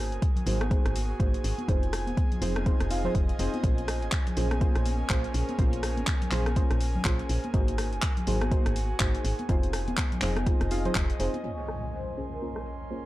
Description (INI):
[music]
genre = deep house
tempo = 123 BPM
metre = 4/4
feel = swing 59% on 16ths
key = Bb minor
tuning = A4 = 441 Hz
[part]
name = deep mellow chord stab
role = stabs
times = 0.0-13.1 s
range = Bb3 to F5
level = -34 LUFS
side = equal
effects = chorus, dub echo
[part]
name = woody FM bass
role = bass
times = 0.0-11.3 s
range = Eb1 to Bb1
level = -30 LUFS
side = equal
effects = sidechain pumping
[part]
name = airy breathy pad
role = texture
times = 0.0-13.1 s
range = Db4 to C6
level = -38 LUFS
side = right 1 dB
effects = chorus, sidechain pumping
[part]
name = deep house drum kit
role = drums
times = 0.1-12.8 s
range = handclaps, hi-hat, rim click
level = -34 LUFS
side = equal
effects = overdrive, low-pass filter on hats, low-pass filter on snare, low-pass filter on room
[part]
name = electronic kick drum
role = drums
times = 0.2-11.1 s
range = none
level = -26 LUFS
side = equal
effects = overdrive
[part]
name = congas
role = percussion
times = 0.4-11.4 s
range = none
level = -37 LUFS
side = left 2 dB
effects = sidechain pumping on perc
[part]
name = mellow horn-like synth lead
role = melody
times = 11.4-12.6 s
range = Bb4 to Db5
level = -41 LUFS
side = left 2 dB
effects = lush chorus, dub echo
[part]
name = impact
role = sound effects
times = 11.4-13.1 s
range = none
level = -37 LUFS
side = equal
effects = none
[sound]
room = light reverb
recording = dark, warm production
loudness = -25 LUFS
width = side -16 dB against mid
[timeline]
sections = 0.0-11.4 A section; 11.4-13.1 B section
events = impact 11.4-13.1; filter sweep on drum 11.4-13.1; filter sweep on synth stab 11.4-13.1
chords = 0.0 Ab9; 1.7 Fm7; 3.6 Bbm9; 7.5 Ab9; 9.5 Fm7; 11.4 Bbm9